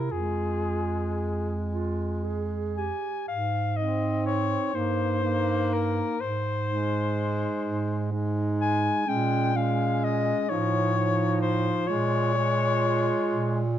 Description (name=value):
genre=classical, lyrical piece for single-reed quartet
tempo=37-44 BPM (dotted quarters)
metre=6/8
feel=rubato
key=F minor, Ab major from 3.3 s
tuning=A4 = 440 Hz
part: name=warm soprano saxophone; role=melody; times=0.0-13.8 s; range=Ab4 to Ab5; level=-28 LUFS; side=left 5 dB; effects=none
part: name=clear clarinet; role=second line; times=0.0-13.6 s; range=Db4 to Ab4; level=-32 LUFS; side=right 5 dB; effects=none
part: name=clear bass clarinet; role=bass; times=0.0-13.8 s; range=F2 to Bb2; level=-29 LUFS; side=right 2 dB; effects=none
part: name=clear tenor saxophone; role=accompaniment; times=0.1-13.6 s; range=F3 to C4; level=-32 LUFS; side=left 1 dB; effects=none
room=light reverb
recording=close, detailed microphones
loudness=-24 LUFS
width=side -11 dB against mid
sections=0.0-3.3 A section; 3.3-13.8 B section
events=none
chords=0.1 Fm; 3.3 Ab; 4.7 Eb/G; 6.2 Ab; 9.1 Bbm7; 10.5 F7/A; 11.9 Bbm7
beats=| 0.12 1.71 | 3.29 4.75 | 6.20 7.65 | 9.08 10.50 | 11.88 13.31